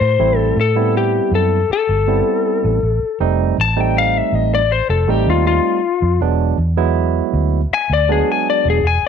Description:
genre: straight-eighth soul blues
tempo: 80 BPM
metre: 4/4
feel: straight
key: A dorian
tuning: A4 = 441 Hz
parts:
  - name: lightly driven lead guitar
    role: melody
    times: 0.0-9.0 s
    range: F4 to A5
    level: -16 LUFS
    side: left 9 dB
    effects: none
  - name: vintage muted fingered electric bass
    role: bass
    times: 0.0-9.1 s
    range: E1 to A2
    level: -17 LUFS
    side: right 1 dB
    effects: none
  - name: barky tine electric piano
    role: accompaniment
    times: 0.2-8.8 s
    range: F#3 to E4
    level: -20 LUFS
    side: right 16 dB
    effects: medium stereo tremolo
room: moderate spring reverb, RT60 1.1 s, digital ambience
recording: 1960s-style stereo with parts hard left and right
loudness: -14 LUFS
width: side -7 dB against mid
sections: 0.0-9.1 A section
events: lead electric guitar solo 0.0-9.1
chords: 0.0 Am9; 3.2 F7; 6.2 E7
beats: | 0.20 0.95 1.70 2.45 | 3.21 3.96 4.71 5.46 | 6.21 6.96 7.71 8.46

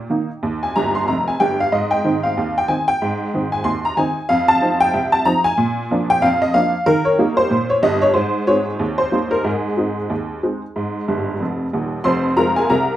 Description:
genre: ragtime piano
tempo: 93 BPM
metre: 2/4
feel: swing 60% on 16ths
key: Ab major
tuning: A4 = 440 Hz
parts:
  - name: honky-tonk upright piano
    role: solo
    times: 0.0-13.0 s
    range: Eb1 to C6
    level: -16 LUFS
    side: equal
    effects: none
room: wet studio reverb, RT60 0.6 s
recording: rough home demo mix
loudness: -16 LUFS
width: side -12 dB against mid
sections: 0.0-12.1 A section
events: honky-tonk piano fill 0.8-1.7, 11.1-12.1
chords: 0.0 Eb; 1.7 Ab; 4.3 F5; 5.6 Bb; 6.9 Eb; 8.2 Ab; 8.8 Eb; 9.5 Ab; 12.1 Fm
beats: | 0.43 1.08 | 1.73 2.37 | 3.02 3.66 | 4.31 4.95 | 5.59 6.24 | 6.88 7.52 | 8.16 8.81 | 9.46 10.11 | 10.76 11.41 | 12.05 12.70

